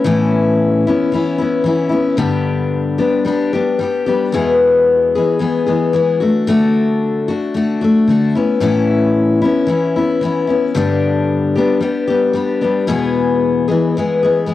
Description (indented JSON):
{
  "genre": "rock",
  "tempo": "112 BPM",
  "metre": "4/4",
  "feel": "straight",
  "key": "A major",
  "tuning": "A4 = 440 Hz",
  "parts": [
    { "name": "picked steel-string acoustic guitar", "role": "solo", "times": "0.0-14.5 s", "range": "E2 to G#4", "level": "-13 LUFS", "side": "left 3 dB", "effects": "cassette tape" }
  ],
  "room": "wet studio reverb, RT60 0.6 s",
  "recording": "home recording on cassette",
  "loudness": "-13 LUFS",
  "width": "side -14 dB against mid",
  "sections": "0.0-12.9 A section; 12.9-14.5 A section",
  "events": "none",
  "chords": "0.0 Aadd9; 2.2 G; 4.3 E; 6.2 D; 8.3 Aadd9; 10.8 G; 12.9 E",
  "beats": "| 0.05 0.58 1.12 1.66 | 2.19 2.73 3.26 3.80 | 4.33 4.87 5.41 5.94 | 6.48 7.01 7.55 8.08 | 8.62 9.15 9.69 10.22 | 10.76 11.29 11.82 12.36 | 12.89 13.43 13.97 14.50"
}